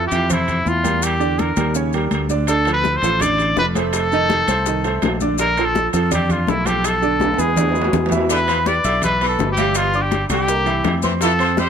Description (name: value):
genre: latin, salsa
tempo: 165 BPM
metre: 4/4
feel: straight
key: unclear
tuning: A4 = 441 Hz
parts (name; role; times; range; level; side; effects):
- clear trumpet; melody; 0.0-11.7 s; E4 to D5; -20 LUFS; left 1 dB; none
- clear grand piano; accompaniment; 0.0-11.7 s; C3 to E6; -22 LUFS; right 5 dB; none
- fingered electric bass; bass; 0.0-11.7 s; F1 to F2; -22 LUFS; left 1 dB; none
- congas; percussion; 0.1-11.7 s; none; -26 LUFS; left 2 dB; none
- maracas; percussion; 0.1-11.7 s; none; -30 LUFS; left 8 dB; none
- timbales; percussion; 0.1-11.6 s; none; -27 LUFS; right 2 dB; none
- bongos; percussion; 2.5-11.7 s; none; -27 LUFS; left 9 dB; none
- clear saxophone section; second line; 8.3-11.7 s; D3 to G3; -26 LUFS; left 1 dB; none
room: light reverb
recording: none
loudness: -16 LUFS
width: side -8 dB against mid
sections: 0.0-8.3 A section; 8.3-11.7 B section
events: drum fill 7.2-8.3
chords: 0.0 F5; 1.0 Em7b5; 1.8 D#7; 2.5 Dm; 3.9 F7; 5.4 Bbmaj7; 6.8 Bm7b5; 7.6 E7; 8.3 Em7; 9.8 G5; 10.5 C7